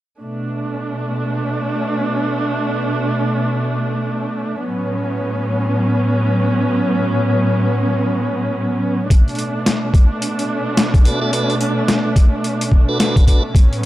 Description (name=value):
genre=glitch hop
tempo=108 BPM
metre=4/4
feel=swing 61% on 16ths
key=B minor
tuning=A4 = 439 Hz
part: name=muted studio string section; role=sustained chords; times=0.2-13.9 s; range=A2 to D4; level=-18 LUFS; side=equal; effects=sidechain pumping
part: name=boom bap sampler-style drum kit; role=drums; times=9.1-13.9 s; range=hi-hat, snare drum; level=-20 LUFS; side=left 1 dB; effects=overdrive
part: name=electronic kick drum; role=drums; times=9.1-13.7 s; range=none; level=-10 LUFS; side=equal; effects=overdrive
part: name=tonewheel organ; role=stabs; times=11.0-13.4 s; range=D4 to E5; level=-23 LUFS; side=right 1 dB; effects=stopped rotary speaker, vintage 12-bit sampler grit, sidechain pumping, dub echo
room=light reverb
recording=dark, warm production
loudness=-15 LUFS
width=side -15 dB against mid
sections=0.2-13.9 A section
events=none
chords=0.2 Bm7; 4.7 A69; 9.1 Bm7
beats=| 0.22 0.78 1.33 1.89 | 2.44 3.00 3.55 4.11 | 4.67 5.22 5.78 6.33 | 6.89 7.44 8.00 8.55 | 9.11 9.67 10.22 10.78 | 11.33 11.89 12.44 13.00 | 13.55